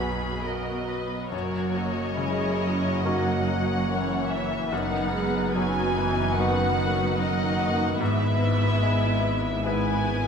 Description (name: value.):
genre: cinematic, emotional film score for orchestra.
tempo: 67-74 BPM.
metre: 4/4.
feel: rubato.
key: B major.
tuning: A4 = 439 Hz.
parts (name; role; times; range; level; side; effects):
muted symphonic violin section; melody; 0.0-10.3 s; C#5 to B5; -30 LUFS; left 2 dB; none.
muted studio violin section; second line; 0.0-10.3 s; C#4 to D#5; -32 LUFS; left 1 dB; none.
bright grand piano; accompaniment; 0.0-10.3 s; B1 to B4; -31 LUFS; left 3 dB; none.
muted studio viola section; accompaniment; 0.0-10.3 s; D#3 to C#4; -30 LUFS; right 1 dB; none.
muted studio cello section; bass; 0.0-10.3 s; F#2 to B2; -30 LUFS; right 2 dB; none.
muted studio double bass section; bass; 0.0-10.3 s; F#1 to B1; -31 LUFS; right 2 dB; none.
room: wet scoring stage reverb, RT60 1.9 s.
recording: none.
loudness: -23 LUFS.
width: side -6 dB against mid.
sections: 0.0-10.3 A section.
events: none.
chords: 0.0 B; 1.3 F#; 4.7 B/F#; 8.0 E/G#.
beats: 0.44 | 1.33 2.18 3.06 3.90 | 4.72 5.55 6.38 7.19 | 8.00 8.82 9.65.